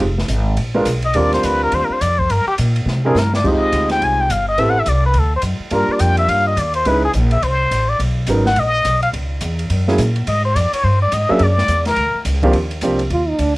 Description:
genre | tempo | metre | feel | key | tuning
jazz, small-group swing and bop | 211 BPM | 4/4 | swing 62% on 8ths | Eb major | A4 = 440 Hz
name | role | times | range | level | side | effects
upright bass | bass | 0.0-13.6 s | F1 to C3 | -18 LUFS | equal | none
open jazz drum kit | drums | 0.0-13.5 s | crash cymbal, hi-hat, kick drum, ride cymbal, snare drum | -26 LUFS | equal | cassette tape
warm concert grand piano | accompaniment | 0.7-13.0 s | Eb2 to Cb5 | -18 LUFS | right 2 dB | cassette tape
trumpet with plunger mute | melody | 1.1-12.2 s | G4 to Ab5 | -17 LUFS | left 1 dB | cassette tape
mellow trombone | second line | 13.1-13.6 s | D4 to F4 | -18 LUFS | right 2 dB | cassette tape
room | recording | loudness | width
light reverb | home recording on cassette | -14 LUFS | side -21 dB against mid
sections
0.0-3.4 A section; 3.4-12.5 A section; 12.5-13.6 A section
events
muted trumpet solo 0.0-12.5; drum fill 2.9-3.4; trombone solo 12.5-13.6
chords
0.0 Fm; 0.6 Bb7b9; 1.2 Ebmaj13; 2.3 Gm; 2.9 C7; 3.4 Fm7; 4.6 Am7; 5.1 D; 5.7 Gm7; 6.9 Dbm7; 7.4 Am; 8.0 Bmaj7; 9.1 Dbm; 9.7 Gb9; 10.3 Ab5; 11.4 Bb; 12.5 Ebmaj13

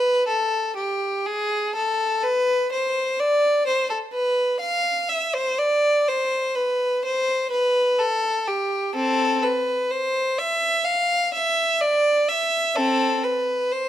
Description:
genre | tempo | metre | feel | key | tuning
classical, baroque-style suite movement for unaccompanied violin | 63 BPM | 4/4 | rubato | C major from 8.9 s | A4 = 441 Hz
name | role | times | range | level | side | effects
rich violin | solo | 0.0-13.9 s | C4 to F5 | -20 LUFS | equal | none
room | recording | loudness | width
light reverb | close, detailed microphones | -20 LUFS | side -11 dB against mid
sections
0.0-13.9 A section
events
none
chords
none

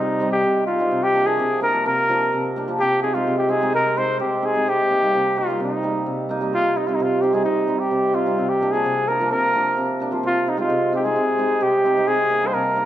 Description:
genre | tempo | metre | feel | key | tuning
klezmer | 129 BPM | 4/4 | straight | unclear | A4 = 440 Hz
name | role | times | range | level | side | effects
mellow cornet | melody | 0.0-12.9 s | Eb4 to C5 | -19 LUFS | equal | none
hammered dulcimer | accompaniment | 0.0-12.9 s | C3 to F4 | -22 LUFS | right 1 dB | none
room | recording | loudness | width
wet recital hall reverb, RT60 1.5 s | dark, warm production | -18 LUFS | side -12 dB against mid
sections
0.0-12.9 A section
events
speeding up 0.0-12.9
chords
0.0 Cm; 0.9 Bb/C; 2.8 Ab/C; 4.7 Eb/C; 6.5 Cm; 8.4 Bb/C; 10.2 Ab/C; 12.1 Eb/C

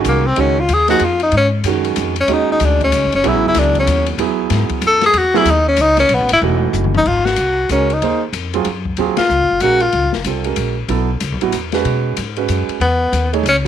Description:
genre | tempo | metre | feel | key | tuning
modal jazz | 188 BPM | 3/4 | swing 62% on 8ths | unclear | A4 = 443 Hz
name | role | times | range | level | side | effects
warm grand piano | accompaniment | 0.0-13.7 s | D#3 to C#5 | -19 LUFS | right 12 dB | none
upright bass | bass | 0.0-13.7 s | E1 to B2 | -19 LUFS | left 1 dB | none
open jazz drum kit | drums | 0.0-13.7 s | crash cymbal, hi-hat, kick drum, ride cymbal, snare drum, toms | -24 LUFS | left 11 dB | none
breathy tenor saxophone | melody | 0.1-10.1, 12.8-13.6 s | A#3 to A4 | -14 LUFS | left 2 dB | none
room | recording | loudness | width
light reverb, studio reverb | 1960s-style stereo with parts hard left and right | -13 LUFS | side -10 dB against mid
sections
0.0-7.1 A section; 7.1-13.7 B section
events
tenor saxophone solo 0.0-7.1; drum fill 6.7-7.1; band accent 9.1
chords
0.0 G#7sus4; 3.2 B13sus4; 7.1 G#13sus4; 10.9 B13sus4

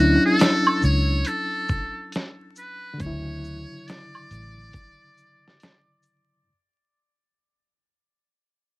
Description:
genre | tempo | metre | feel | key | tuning
lo-fi hip hop | 69 BPM | 4/4 | swing 64% on 16ths | D major | A4 = 440 Hz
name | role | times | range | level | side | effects
trumpet with metal mute | melody | 0.0-6.0 s | F#4 to D5 | -26 LUFS | equal | cassette tape
overdriven reed electric piano | accompaniment | 0.0-6.5 s | C#3 to E4 | -23 LUFS | left 1 dB | fast tremolo, cassette tape
vintage muted fingered electric bass | bass | 0.0-4.7 s | A1 to D2 | -23 LUFS | equal | none
dusty soul sampler-style drum kit | drums | 0.4-6.3 s | finger snaps, hi-hat, kick drum, shaker, snare drum | -23 LUFS | equal | overdrive, vintage 12-bit sampler grit
egg shaker and woodblock | percussion | 0.4-6.3 s | none | -23 LUFS | right 2 dB | none
room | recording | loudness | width
light reverb | home recording on cassette, vinyl crackle | -20 LUFS | side -22 dB against mid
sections
0.0-6.5 A section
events
fade-out 0.0-6.5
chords
0.0 Dmaj9

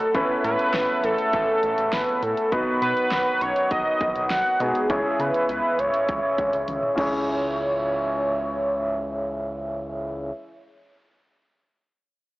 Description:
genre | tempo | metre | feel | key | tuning
synth-pop | 101 BPM | 4/4 | straight | C# minor | A4 = 445 Hz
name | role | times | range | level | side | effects
wide unison lead | melody | 0.0-10.3 s | G#4 to F#5 | -24 LUFS | equal | low-pass filter, digital delay
clear baby grand piano | accompaniment | 0.0-10.3 s | B3 to C#5 | -29 LUFS | left 1 dB | low-pass filter
mellow accordion | sustained chords | 0.0-10.3 s | C#3 to F#4 | -28 LUFS | equal | low-pass filter
pop drum kit | drums | 0.0-7.1 s | crash cymbal, hi-hat, kick drum, snare drum, toms | -33 LUFS | equal | none
round analog bass | bass | 0.1-10.3 s | A1 to C#3 | -35 LUFS | equal | transformer saturation
room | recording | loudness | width
moderate recital hall reverb, RT60 1.5 s, digital ambience | blown-out, overdriven recording, overdrive, AM radio sound | -21 LUFS | side -19 dB against mid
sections
0.0-7.3 A section; 7.3-9.7 B section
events
filter sweep 0.0-7.3; drum fill 6.7-7.3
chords
0.1 Aadd9; 2.5 B; 4.9 C#m

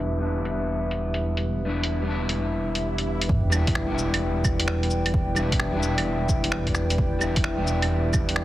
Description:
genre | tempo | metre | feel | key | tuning
future garage | 130 BPM | 4/4 | swing 66% on 16ths | E minor | A4 = 440 Hz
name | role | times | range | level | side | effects
electric guitar at the edge of break-up | accompaniment | 0.0-8.4 s | G3 to E4 | -29 LUFS | left 2 dB | wide subtle chorus, sidechain pumping, dub echo
dark analog pad | sustained chords | 0.0-8.4 s | D4 to G5 | -30 LUFS | equal | lush chorus, sidechain pumping
dark detuned saw bass | bass | 0.0-8.4 s | E1 | -27 LUFS | equal | tube saturation, sidechain pumping
lo-fi sampler-style drum kit | drums | 0.5-8.4 s | cabasa, claves, finger snaps, hi-hat | -28 LUFS | right 1 dB | studio reverb
swell and sub drop | sound effects | 2.7-5.1 s | none | -30 LUFS | right 1 dB | none
electronic kick drum | drums | 3.3-8.3 s | none | -26 LUFS | equal | studio reverb
room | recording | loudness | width
light reverb | heavily compressed radio sound, low-pass filter | -22 LUFS | side -15 dB against mid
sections
0.0-3.3 A section; 3.3-8.4 B section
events
filter sweep on drum 0.0-3.3; filter sweep 0.0-3.3; swell 2.7-3.3; impact 3.3-5.1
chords
0.0 Em7

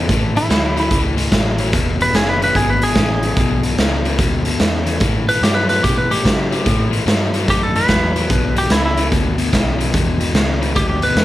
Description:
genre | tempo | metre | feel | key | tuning
electric blues shuffle | 146 BPM | 4/4 | swing 65% on 8ths | unclear | A4 = 440 Hz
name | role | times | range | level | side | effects
crunchy overdriven guitar | riff | 0.0-11.2 s | E2 to F#3 | -21 LUFS | left 5 dB | none
vintage muted fingered electric bass | bass | 0.0-11.2 s | E1 to C#3 | -21 LUFS | equal | none
raw garage drum kit | drums | 0.1-11.2 s | hi-hat, kick drum, snare drum | -17 LUFS | right 1 dB | none
clean lap steel guitar | melody | 0.4-11.2 s | E4 to B4 | -19 LUFS | equal | plate reverb
room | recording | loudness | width
light reverb | none | -14 LUFS | side -15 dB against mid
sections
0.0-11.2 A section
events
electric slide guitar solo 0.0-11.2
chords
0.1 A; 1.7 E7; 5.0 A7(no3); 8.3 E5

